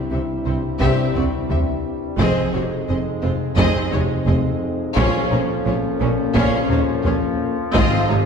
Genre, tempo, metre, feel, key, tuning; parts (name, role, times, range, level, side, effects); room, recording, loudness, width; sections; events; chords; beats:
cinematic, epic orchestral film score; 86 BPM; 4/4; straight; F minor; A4 = 440 Hz
dark French horn section; sustained chords; 0.0-8.3 s; C3 to E4; -26 LUFS; left 5 dB
warm trombone section; sustained chords; 0.0-8.3 s; F2 to Ab3; -28 LUFS; right 2 dB
rich symphonic violin section; melody; 0.1-8.2 s; Bb4 to E5; -29 LUFS; left 3 dB
warm symphonic violin section; second line; 0.1-8.2 s; Db4 to Ab4; -29 LUFS; left 2 dB
rich symphonic viola section; accompaniment; 0.1-8.2 s; C3 to Db4; -26 LUFS; right 1 dB
rich chamber double bass section; bass; 0.1-8.2 s; F1 to C2; -23 LUFS; right 1 dB
rich symphonic cello section; bass; 0.1-8.2 s; F2 to C3; -25 LUFS; right 2 dB
taiko ensemble; drums; 0.8-8.3 s; -25 LUFS; left 1 dB
wet scoring stage reverb, RT60 2.0 s; heard from further back in the room; -17 LUFS; side -6 dB against mid
0.0-8.3 A section
0.0 C; 2.2 Fm7; 5.0 Bbm; 7.7 Fm7/Ab
0.11 0.80 1.50 | 2.19 2.88 3.58 4.27 | 4.97 5.66 6.35 7.05 | 7.74